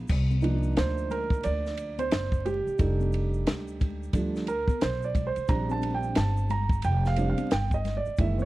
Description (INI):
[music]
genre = hip hop, jazz-hop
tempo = 89 BPM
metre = 4/4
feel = swing 62% on 16ths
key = C dorian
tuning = A4 = 440 Hz
[part]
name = dark grand piano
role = accompaniment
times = 0.0-8.5 s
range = D#3 to Bb5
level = -30 LUFS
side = right 4 dB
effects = none
[part]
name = upright bass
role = bass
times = 0.0-8.5 s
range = F1 to D2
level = -28 LUFS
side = equal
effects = none
[part]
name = compact cocktail drum kit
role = drums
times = 0.1-8.4 s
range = crash cymbal, hi-hat, kick drum, ride cymbal, snare drum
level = -27 LUFS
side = equal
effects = none
[part]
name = egg shaker and congas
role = percussion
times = 0.1-8.5 s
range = none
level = -40 LUFS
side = left 7 dB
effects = none
[sound]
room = small room ambience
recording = dry, close 1970s-style studio recording, vinyl crackle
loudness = -25 LUFS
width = side -17 dB against mid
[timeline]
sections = 0.1-8.5 A section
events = grand piano solo 0.1-8.5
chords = 0.1 Cm11; 2.8 F13; 5.5 Bb6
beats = | 0.10 0.77 1.44 2.12 | 2.79 3.47 4.14 4.82 | 5.49 6.16 6.84 7.51 | 8.19